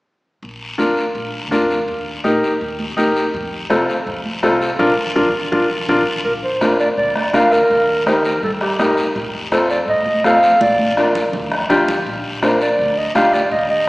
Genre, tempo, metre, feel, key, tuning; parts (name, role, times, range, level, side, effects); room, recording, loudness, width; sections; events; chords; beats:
latin, cumbia; 165 BPM; 4/4; straight; Bb major; A4 = 439 Hz
upright bass; bass; 0.4-13.9 s; Bb1 to A2; -33 LUFS; equal
guiro; percussion; 0.4-13.9 s; -28 LUFS; left 1 dB
clear upright piano; accompaniment; 0.8-13.4 s; C4 to Bb4; -18 LUFS; left 1 dB
congas; percussion; 0.8-13.3 s; -27 LUFS; right 1 dB
bombo; percussion; 3.3-13.7 s; -24 LUFS; left 1 dB
mellow clarinet; melody; 6.2-13.9 s; G4 to F5; -16 LUFS; equal
wet concert hall reverb, RT60 1.9 s; recorded in a church or concert hall, small speaker sound; -14 LUFS; side -21 dB against mid
0.4-6.2 A section; 6.2-13.9 B section
band accent 4.8-6.2; drum fill 5.2-6.2, 10.6-12.1
0.4 Bb; 1.9 Eb; 3.3 F; 4.8 Bb; 7.7 Eb; 9.2 F7; 10.6 Bb
| 0.43 0.79 1.16 1.52 | 1.89 2.25 2.61 2.98 | 3.34 3.71 4.07 4.43 | 4.80 5.16 5.52 5.89 | 6.25 6.61 6.98 7.34 | 7.70 8.07 8.43 8.79 | 9.16 9.52 9.88 10.25 | 10.61 10.97 11.34 11.70 | 12.06 12.43 12.79 13.15 | 13.51 13.88